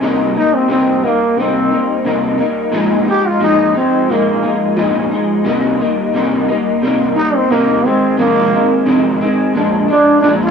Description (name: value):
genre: indie pop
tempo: 88 BPM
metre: 4/4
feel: straight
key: C minor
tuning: A4 = 439 Hz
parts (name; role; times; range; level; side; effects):
- electric guitar through a small old amp; accompaniment; 0.0-10.5 s; F2 to Eb4; -14 LUFS; left 1 dB; analog chorus, vibrato effect
- growling trombone; melody; 0.4-10.5 s; Bb3 to G4; -14 LUFS; right 1 dB; lush chorus, tape echo
room: light reverb, small room ambience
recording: dry, gritty hardware recording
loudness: -12 LUFS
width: side -6 dB against mid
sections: 0.0-10.5 A section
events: trombone solo 0.0-10.5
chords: 0.0 Cm7; 2.7 Bb7sus4; 5.5 Cm7; 7.9 Fm7; 9.6 Bb7